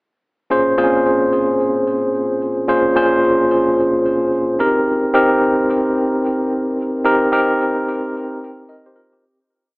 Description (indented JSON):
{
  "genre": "R&B",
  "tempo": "110 BPM",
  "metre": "4/4",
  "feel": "swing 63% on 16ths",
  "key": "Bb dorian",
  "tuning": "A4 = 441 Hz",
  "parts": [
    { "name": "bright tine electric piano", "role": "solo", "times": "0.5-9.4 s", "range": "Bb2 to Eb5", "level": "-14 LUFS", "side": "equal", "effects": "medium stereo tremolo, digital delay" }
  ],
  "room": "light reverb, digital ambience",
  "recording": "AM radio sound",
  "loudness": "-14 LUFS",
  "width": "side -29 dB against mid",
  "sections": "0.5-9.2 verse",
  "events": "fade-out 7.0-9.2",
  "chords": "0.5 Bbm7; 4.6 Cm7"
}